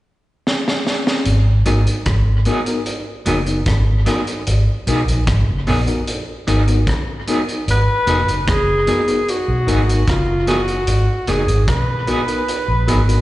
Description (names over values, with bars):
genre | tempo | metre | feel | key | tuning
lovers rock reggae | 75 BPM | 4/4 | straight | G# dorian | A4 = 438 Hz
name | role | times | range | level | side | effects
crunchy breakbeat drum kit | drums | 0.5-13.2 s | hi-hat, kick drum, rim click, snare drum | -23 LUFS | equal | dub echo
vintage muted fingered electric bass | bass | 1.3-13.2 s | E#1 to B1 | -16 LUFS | equal | none
mellow tine electric piano | accompaniment | 1.7-13.2 s | B3 to A#4 | -24 LUFS | left 3 dB | medium stereo tremolo, slapback echo
electric guitar at the edge of break-up | stabs | 1.7-13.0 s | F#3 to G#4 | -22 LUFS | right 1 dB | tremolo, slapback echo
warm alto saxophone | melody | 7.7-13.2 s | E#4 to B4 | -19 LUFS | equal | dub echo, slapback echo
room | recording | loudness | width
little or no reverb | live gig heard through the venue's PA, recital hall reverb, nothing above 10.8 kHz | -15 LUFS | side -16 dB against mid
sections
0.0-1.3 A section; 1.3-7.7 B section; 7.7-13.2 C section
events
drum fill 0.5-1.3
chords
0.0 N.C.; 1.3 G#m7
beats
0.46 | 1.26 2.06 2.86 3.66 | 4.46 5.26 6.07 6.87 | 7.67 8.47 9.27 10.07 | 10.87 11.68 12.48